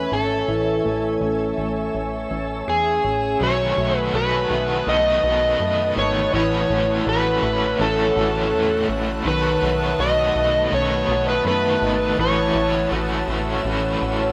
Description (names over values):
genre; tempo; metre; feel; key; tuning
dream pop; 82 BPM; 4/4; straight; A lydian; A4 = 440 Hz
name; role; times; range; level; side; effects
overdriven slide guitar; melody; 0.0-12.9 s; G#4 to D#5; -23 LUFS; equal; delay
shimmering ambient pad; sustained chords; 0.0-14.3 s; B4 to E6; -30 LUFS; equal; chorus, built-in reverb
electric guitar at the edge of break-up; arpeggios; 0.0-14.3 s; D#3 to G#4; -29 LUFS; equal; lush chorus, delay
plucky analog bass; bass; 0.0-14.3 s; G#1 to F#2; -30 LUFS; equal; none
overdriven electric guitar; accompaniment; 3.4-14.3 s; A2 to F#4; -28 LUFS; equal; tremolo, subtle chorus
room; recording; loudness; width
light reverb; rough home demo mix; -20 LUFS; mono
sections
0.0-3.4 A section; 3.4-14.3 B section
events
none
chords
0.0 Amaj7; 3.4 B7; 6.3 A6; 9.3 B7; 12.2 A6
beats
| 0.48 1.21 1.94 2.67 | 3.41 4.14 4.87 5.60 | 6.33 7.06 7.80 8.53 | 9.26 9.99 10.72 11.46 | 12.19 12.92 13.65